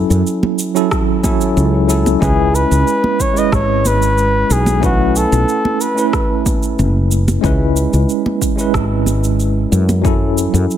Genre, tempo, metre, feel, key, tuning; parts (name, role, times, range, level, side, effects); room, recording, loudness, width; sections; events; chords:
sunset chillout; 92 BPM; 4/4; straight; C# minor; A4 = 436 Hz
tine electric piano; accompaniment; 0.0-10.8 s; F#3 to B4; -17 LUFS; moving between left 6 dB and right 7 dB; medium stereo tremolo, auto-pan, digital delay
woody fretless electric bass; bass; 0.0-10.7 s; F#1 to F#2; -15 LUFS; equal; tube saturation
electronic cabasa and rim click; drums; 0.1-10.8 s; -24 LUFS; right 2 dB; studio reverb
congas; percussion; 0.4-10.0 s; -20 LUFS; right 2 dB
electronic kick drum; drums; 0.9-10.2 s; -19 LUFS; equal; overdrive, studio reverb
mellow flugelhorn; melody; 2.2-6.5 s; F#4 to D#5; -17 LUFS; left 1 dB; digital delay
digital ambience; -12 LUFS; side -10 dB against mid
0.0-10.8 A section
0.0 F#m7; 2.2 C#m7; 4.8 B9sus4; 7.4 C#m7; 10.0 F#m7